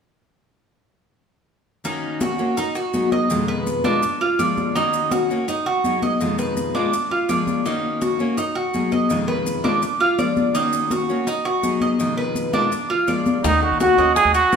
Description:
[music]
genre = latin, Cuban son and guajira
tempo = 166 BPM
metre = 4/4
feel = straight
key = Eb harmonic minor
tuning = A4 = 439 Hz
[part]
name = picked steel-string acoustic guitar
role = accompaniment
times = 1.8-14.6 s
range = F2 to Ab4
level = -25 LUFS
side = left 3 dB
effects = none
[part]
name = maracas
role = percussion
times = 1.8-14.6 s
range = none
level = -37 LUFS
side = left 6 dB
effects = none
[part]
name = Cuban tres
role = arpeggios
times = 1.9-14.6 s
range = D4 to Eb5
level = -21 LUFS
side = right 2 dB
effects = none
[part]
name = congas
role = percussion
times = 1.9-14.6 s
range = none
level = -25 LUFS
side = left 3 dB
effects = none
[part]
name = breathy trumpet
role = melody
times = 13.4-14.6 s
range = Eb4 to Ab4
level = -16 LUFS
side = right 5 dB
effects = none
[part]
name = upright bass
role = bass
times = 13.4-14.6 s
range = Cb2 to Eb2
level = -24 LUFS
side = equal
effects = none
[part]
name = bongos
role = percussion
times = 13.4-14.6 s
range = none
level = -28 LUFS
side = left 6 dB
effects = none
[sound]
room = wet recital hall reverb, RT60 1.4 s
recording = minimal, uncompressed stereo recording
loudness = -18 LUFS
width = side -6 dB against mid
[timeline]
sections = 1.9-13.4 A section; 13.4-14.6 B section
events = none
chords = 1.9 Ebm7; 2.6 Abm7; 3.3 Fm7b5; 4.0 Fm6; 4.8 Ebm7; 5.5 Abm7; 6.2 Fm7b5; 6.9 Fm6; 7.7 Ebm7; 8.4 Abm7; 9.1 Fm7b5; 9.8 Fm6; 10.6 Ebm7; 11.3 Abm7; 12.0 Fm7b5; 12.7 Fm6; 13.4 Ebm7

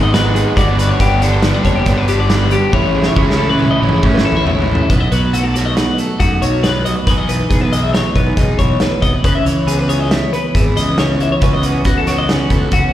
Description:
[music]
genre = math rock and midwest emo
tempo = 138 BPM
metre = 5/4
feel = straight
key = unclear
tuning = A4 = 440 Hz
[part]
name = twelve-string electric guitar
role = accompaniment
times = 0.0-12.9 s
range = G2 to G#4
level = -20 LUFS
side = right 4 dB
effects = phaser, slapback echo
[part]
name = twelve-string electric guitar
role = arpeggios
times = 0.0-12.9 s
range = F#4 to E5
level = -19 LUFS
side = left 6 dB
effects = warbly pitch drift, slapback echo
[part]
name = overdriven electric guitar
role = riff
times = 0.0-4.9 s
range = G2 to E4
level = -19 LUFS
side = right 1 dB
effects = spring reverb, slapback echo
[part]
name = fuzz fingered electric bass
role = bass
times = 0.0-12.9 s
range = F#1 to A2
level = -17 LUFS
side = equal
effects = overdrive
[part]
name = loose indie drum kit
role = drums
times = 0.1-12.8 s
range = hi-hat, kick drum, snare drum, toms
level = -18 LUFS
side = equal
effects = none
[sound]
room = little or no reverb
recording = live gig heard through the venue's PA, recital hall reverb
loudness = -12 LUFS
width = side -12 dB against mid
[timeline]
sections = 0.0-4.9 A section; 4.9-12.9 B section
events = drum fill 2.7-4.9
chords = 0.0 G#m7; 0.6 Gmaj7; 2.7 Amaj7; 4.9 B7; 7.1 Emaj7/B; 9.3 C#m7; 11.4 A69/C#

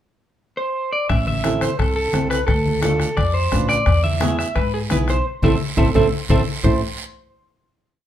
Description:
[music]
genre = latin, cumbia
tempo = 173 BPM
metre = 4/4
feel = straight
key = A harmonic minor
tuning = A4 = 441 Hz
[part]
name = electric guitar at the edge of break-up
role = melody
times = 0.6-6.8 s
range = G#4 to E5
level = -22 LUFS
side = equal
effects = spring reverb
[part]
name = upright bass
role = bass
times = 1.1-6.8 s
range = A1 to G#2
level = -22 LUFS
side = equal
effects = none
[part]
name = bombo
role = percussion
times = 1.1-6.7 s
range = none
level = -23 LUFS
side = left 1 dB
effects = none
[part]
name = congas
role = percussion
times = 1.1-6.7 s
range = none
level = -26 LUFS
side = left 3 dB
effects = none
[part]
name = guiro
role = percussion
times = 1.1-6.7 s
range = none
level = -34 LUFS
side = right 5 dB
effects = none
[part]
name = flamenco guitar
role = accompaniment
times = 1.4-6.8 s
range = B3 to B4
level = -22 LUFS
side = right 4 dB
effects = none
[sound]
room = light reverb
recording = minimal, uncompressed stereo recording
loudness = -17 LUFS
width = side -11 dB against mid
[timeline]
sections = 0.0-1.1 pickup bar; 1.1-6.6 A section; 6.6-8.0 final chord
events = band accent 5.3-6.6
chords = 0.0 N.C.; 1.1 Am; 2.5 Dm; 3.9 E; 5.3 Am

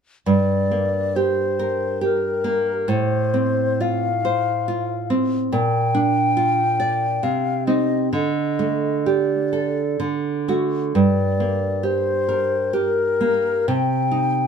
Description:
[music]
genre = romantic duo for flute and classical guitar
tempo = 61-72 BPM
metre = 3/4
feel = rubato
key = G minor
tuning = A4 = 440 Hz
[part]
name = mellow hollow concert flute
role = melody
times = 0.3-14.5 s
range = Bb4 to G5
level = -22 LUFS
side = left 3 dB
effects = none
[part]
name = nylon-string guitar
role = accompaniment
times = 0.3-14.5 s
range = G2 to D5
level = -20 LUFS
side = right 2 dB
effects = none
[sound]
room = moderate studio reverb, RT60 0.8 s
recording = dark, warm production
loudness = -18 LUFS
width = side -6 dB against mid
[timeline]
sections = 0.3-14.5 A section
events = none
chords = 0.3 Gm; 2.9 F/A; 5.5 Bb; 7.2 Cm; 8.1 Dsus4; 10.0 D; 10.9 Gm; 13.7 Cm

